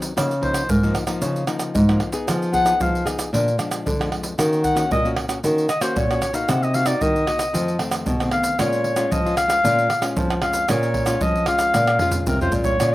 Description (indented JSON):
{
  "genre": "samba and choro",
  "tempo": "114 BPM",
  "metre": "4/4",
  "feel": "straight",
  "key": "Bb minor",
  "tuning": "A4 = 439 Hz",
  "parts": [
    { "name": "nylon-string guitar", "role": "accompaniment", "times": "0.0-12.9 s", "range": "F2 to Ab4", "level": "-27 LUFS", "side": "left 2 dB", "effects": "none" },
    { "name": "maracas, pandeiro, surdo and tamborim", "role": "percussion", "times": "0.0-12.9 s", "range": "none", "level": "-25 LUFS", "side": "right 2 dB", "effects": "none" },
    { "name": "nylon-string guitar", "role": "bass", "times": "0.2-12.9 s", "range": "Ab2 to F3", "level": "-21 LUFS", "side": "equal", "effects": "none" },
    { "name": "clear clarinet", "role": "melody", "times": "0.4-12.9 s", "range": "Bb4 to Gb5", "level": "-21 LUFS", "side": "left 1 dB", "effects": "none" }
  ],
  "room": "little or no reverb",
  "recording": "recorded outdoors, with no room sound",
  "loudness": "-18 LUFS",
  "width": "side -16 dB against mid",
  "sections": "0.0-12.8 A section",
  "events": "clarinet solo 0.0-12.8; drum fill 11.7-12.8",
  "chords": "0.2 Db69; 2.3 Fm7b5; 3.3 Bb7; 4.4 Ebm7; 6.5 Cm7b5; 7.5 F7; 8.6 Bbm7",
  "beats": "| 0.17 0.69 1.22 1.75 | 2.28 2.80 3.33 3.86 | 4.38 4.91 5.44 5.96 | 6.49 7.01 7.54 8.07 | 8.59 9.12 9.64 10.17 | 10.70 11.22 11.75 12.27 | 12.80"
}